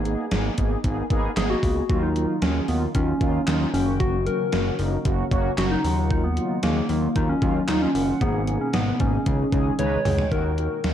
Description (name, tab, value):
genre	synth-pop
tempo	114 BPM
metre	4/4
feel	straight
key	Eb minor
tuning	A4 = 440 Hz
part	fat analog bass	bass	0.0-10.9 s	Gb1 to Eb2	-26 LUFS	equal	none
part	mellow synth brass	accompaniment	0.1-10.9 s	Gb3 to Cb5	-27 LUFS	equal	chorus
part	gated 80s digital drum machine	drums	0.1-10.9 s	handclaps, hi-hat, kick drum, snare drum, toms	-26 LUFS	equal	gated reverb, gated reverb snare, overdrive
part	soft struck synth lead	melody	1.4-10.9 s	Bb3 to Db5	-26 LUFS	left 1 dB	chorus, analog delay
part	handpan	arpeggios	1.9-10.3 s	Cb3 to G5	-32 LUFS	right 4 dB	analog delay
room	light reverb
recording	dark, warm production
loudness	-20 LUFS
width	side -10 dB against mid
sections	0.0-10.3 A section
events	drum fill 9.8-10.3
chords	0.0 Abmadd9; 1.9 Ebmadd9; 3.7 Gb; 5.8 Ebmadd9; 8.2 Abmadd9; 9.3 Dbsus2; 10.3 Ebm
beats	0.32 0.84 1.37 | 1.90 2.42 2.95 3.48 | 4.00 4.53 5.05 5.58 | 6.11 6.63 7.16 7.68 | 8.21 8.74 9.26 9.79 | 10.32 10.84